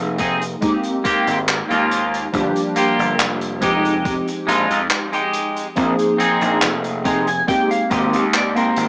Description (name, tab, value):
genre	vaporwave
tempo	70 BPM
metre	4/4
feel	straight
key	unclear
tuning	A4 = 439 Hz
part	warbly lo-fi synth keys	accompaniment	0.0-8.9 s	F3 to Ab4	-24 LUFS	equal	ensemble chorus, tape echo
part	gritty slap bass	bass	0.0-8.9 s	F1 to F2	-26 LUFS	equal	overdrive, tube saturation
part	clean electric guitar	riff	0.2-8.9 s	Ab3 to Bb5	-22 LUFS	equal	lush chorus, tape echo
part	electronic kick drum	drums	0.2-8.1 s	none	-28 LUFS	equal	none
part	loose indie drum kit	drums	0.2-8.9 s	handclaps, hi-hat	-27 LUFS	equal	none
room	moderate studio reverb, RT60 0.5 s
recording	rough home demo mix, small speaker sound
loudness	-19 LUFS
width	mono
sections	0.0-8.9 A section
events	clean electric guitar fill 6.6-8.9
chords	0.0 Bb9sus4; 0.6 Abmaj9; 2.3 Gm7; 3.6 Fm9; 5.8 Bb9sus4; 7.5 Abmaj9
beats	0.63 1.48 | 2.34 3.20 4.05 4.91 | 5.77 6.63 7.48 8.34